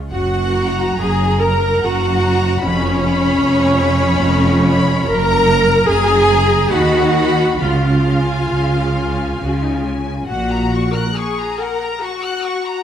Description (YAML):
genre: classical, slow romantic movement for string orchestra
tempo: 65-77 BPM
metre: 3/4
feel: rubato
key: F# major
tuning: A4 = 440 Hz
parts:
  - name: warm symphonic violin section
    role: second line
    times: 0.1-12.8 s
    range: C#5 to A#5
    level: -24 LUFS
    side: left 3 dB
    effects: none
  - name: rich chamber viola section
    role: accompaniment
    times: 0.1-12.8 s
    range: C#4 to A#4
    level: -17 LUFS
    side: equal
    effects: none
  - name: rich symphonic cello section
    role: bass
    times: 0.1-11.0 s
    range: E#2 to D#3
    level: -20 LUFS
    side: right 1 dB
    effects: none
  - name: rich symphonic double bass section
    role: bass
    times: 0.1-11.0 s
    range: E#1 to D#2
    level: -20 LUFS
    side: right 2 dB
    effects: none
  - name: warm symphonic violin section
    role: melody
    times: 0.5-12.8 s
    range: F#5 to F#6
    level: -25 LUFS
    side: left 3 dB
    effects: none
room: moderate scoring stage reverb, RT60 1.8 s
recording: none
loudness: -13 LUFS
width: side -9 dB against mid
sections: 0.1-12.8 A section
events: none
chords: 0.1 F#; 2.6 C#7/E#; 5.1 F#; 6.7 B/D#; 7.6 C#; 10.3 F#/A#